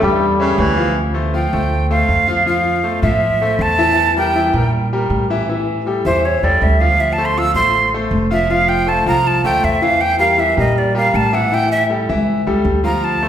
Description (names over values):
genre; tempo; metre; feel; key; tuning
latin; 159 BPM; 4/4; straight; D minor; A4 = 440 Hz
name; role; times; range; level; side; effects
bright trombone section; melody; 0.0-0.7 s; G2 to G3; -16 LUFS; left 2 dB; none
bright concert grand piano; accompaniment; 0.0-13.3 s; E3 to G5; -19 LUFS; left 1 dB; none
upright bass; bass; 0.0-13.3 s; F1 to Bb2; -19 LUFS; equal; none
clear baritone saxophone; second line; 0.4-1.0 s; C#3 to E3; -21 LUFS; right 2 dB; none
breathy bright jazz flute; melody; 1.3-13.3 s; C5 to E6; -16 LUFS; right 2 dB; none
room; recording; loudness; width
wet recital hall reverb, RT60 1.6 s; recorded in a church or concert hall; -13 LUFS; side -10 dB against mid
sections
1.0-13.3 A section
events
flute solo 1.0-13.3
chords
0.0 A7 (rootless); 1.0 Dm7; 2.5 Fmaj7; 4.0 Edim; 5.5 A5; 7.0 Dm7; 8.5 Fmaj7; 10.0 Edim; 11.5 A7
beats
0.21 0.58 | 0.96 1.34 1.72 2.09 | 2.47 2.85 3.22 3.60 | 3.98 4.36 4.73 5.11 | 5.49 5.86 6.24 6.62 | 6.99 7.37 7.75 8.12 | 8.50 8.88 9.26 9.63 | 10.01 10.39 10.77 11.14 | 11.52 11.90 12.28 12.65 | 13.03